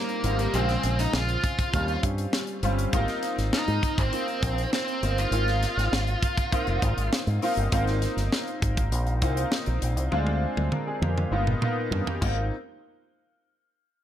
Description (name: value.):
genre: polished 1980s jazz-funk pop.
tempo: 100 BPM.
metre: 4/4.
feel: straight.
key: Ab major.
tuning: A4 = 440 Hz.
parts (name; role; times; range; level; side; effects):
octave-fuzz lead guitar; melody; 0.0-7.1 s; Bb3 to F4; -30 LUFS; right 1 dB; distortion.
clear baby grand piano; accompaniment; 0.0-12.5 s; Db3 to Bb4; -30 LUFS; left 1 dB; analog chorus.
tight funk drum kit; drums; 0.1-12.4 s; crash cymbal, hi-hat, kick drum, snare drum, toms; -29 LUFS; equal; none.
fingered electric bass with an envelope filter; bass; 0.2-12.5 s; F1 to Ab2; -26 LUFS; equal; none.
room: small room reverb.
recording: none.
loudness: -23 LUFS.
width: side -11 dB against mid.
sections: 0.0-7.7 A section; 7.7-12.5 B section; 12.5-14.0 C section.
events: drum fill 10.1-12.5.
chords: 0.0 Dbmaj9#11 (rootless); 0.5 Bbm7; 1.7 Eb13; 2.9 Ab69; 10.1 Dm7b5; 11.3 G7alt; 12.2 Ab69; 12.5 N.C..